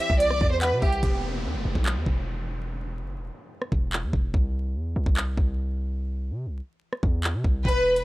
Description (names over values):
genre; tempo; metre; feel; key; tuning
hip hop, drill; 145 BPM; 4/4; half-time; E minor; A4 = 443 Hz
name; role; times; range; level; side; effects
dark studio violin section; melody; 0.0-1.0, 7.7-8.0 s; G4 to E5; -24 LUFS; equal; tape echo
mallet-like synth pluck; second line; 0.0-1.0 s; E5 to F#5; -36 LUFS; equal; chorus, tape echo
concert harp; accompaniment; 0.0-1.1 s; E3 to G4; -50 LUFS; left 4 dB; none
warm studio string section; sustained chords; 0.0-1.0 s; E3 to G4; -40 LUFS; equal; none
drill drum kit; drums; 0.0-8.0 s; handclaps, hi-hat, kick drum, rim click; -25 LUFS; equal; none
hard-hitting 808-style bass; bass; 0.1-8.0 s; E1 to C3; -28 LUFS; equal; none
downlifter; sound effects; 1.0-4.3 s; none; -37 LUFS; equal; none
room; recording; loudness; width
little or no reverb; dry, gritty hardware recording, vinyl crackle; -23 LUFS; side -18 dB against mid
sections
0.0-1.0 A section; 1.0-8.0 B section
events
break 1.0-7.7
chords
0.0 C; 1.0 E5; 4.3 C